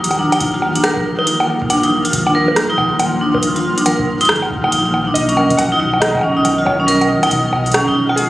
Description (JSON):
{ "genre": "IDM", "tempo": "139 BPM", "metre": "4/4", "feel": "swing 62% on 16ths", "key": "Eb major", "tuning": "A4 = 445 Hz", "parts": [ { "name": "warbly tape-like pad", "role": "sustained chords", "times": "0.0-8.3 s", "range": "B2 to D#6", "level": "-23 LUFS", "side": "equal", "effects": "chorus, built-in reverb, vintage 12-bit sampler grit" }, { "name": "warm sub bass", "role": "bass", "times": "0.0-7.9 s", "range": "Eb1 to Eb2", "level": "-26 LUFS", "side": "equal", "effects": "tube saturation" }, { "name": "booming analog drum machine", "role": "drums", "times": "0.0-8.3 s", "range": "bongos, hi-hat, rim click", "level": "-18 LUFS", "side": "equal", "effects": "tape echo" }, { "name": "flickering grainy texture", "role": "texture", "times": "0.0-8.3 s", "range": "F3 to F6", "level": "-24 LUFS", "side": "equal", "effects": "built-in reverb" }, { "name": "vibraphone with hard mallets", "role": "arpeggios", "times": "0.2-8.1 s", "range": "Db4 to Bb4", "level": "-16 LUFS", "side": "equal", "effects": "digital delay" }, { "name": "electronic kick drum", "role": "drums", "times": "0.4-7.9 s", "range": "none", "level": "-27 LUFS", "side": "equal", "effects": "none" }, { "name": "warbly lo-fi synth keys", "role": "melody", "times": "5.1-8.3 s", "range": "Ab4 to F#5", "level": "-20 LUFS", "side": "equal", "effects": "chorus, tape echo" } ], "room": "moderate huge ambient reverb, RT60 7.0 s", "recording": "recorded on a phone in the room, studio reverb", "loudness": "-13 LUFS", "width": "side -16 dB against mid", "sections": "0.0-8.3 A section", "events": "none", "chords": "0.0 Eb; 5.2 B" }